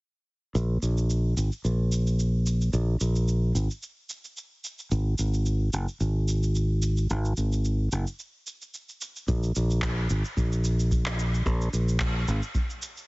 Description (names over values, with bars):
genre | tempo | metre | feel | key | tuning
sunset chillout | 110 BPM | 4/4 | swing 55% on 16ths | unclear | A4 = 440 Hz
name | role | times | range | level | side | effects
fingered electric bass | bass | 0.6-12.4 s | Gb1 to Bb1 | -24 LUFS | equal | none
electronic shaker and handclaps | drums | 0.6-13.1 s | none | -36 LUFS | right 1 dB | none
electronic kick drum | drums | 9.3-12.7 s | none | -28 LUFS | equal | none
room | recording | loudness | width
little or no reverb | heavily compressed radio sound, multiband compression, nothing above 7.9 kHz | -24 LUFS | side -25 dB against mid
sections
0.6-9.3 A section; 9.3-13.1 B section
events
filter sweep on fingered electric bass 0.6-9.3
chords
none